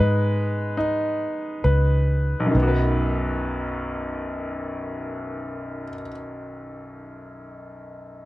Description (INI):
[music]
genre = folk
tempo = 64-76 BPM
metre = 4/4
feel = straight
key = B major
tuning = A4 = 440 Hz
[part]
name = bright grand piano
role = melody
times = 0.0-8.3 s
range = B1 to B4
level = -26 LUFS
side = left 1 dB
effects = none
[part]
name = vintage muted fingered electric bass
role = bass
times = 0.0-6.0 s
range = B1 to G#2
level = -22 LUFS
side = equal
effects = none
[sound]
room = little or no reverb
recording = close, detailed microphones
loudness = -22 LUFS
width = side -17 dB against mid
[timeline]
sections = 0.0-2.5 A section; 2.5-6.2 B section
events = slowing down 0.0-2.5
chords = 0.0 G#m; 2.5 B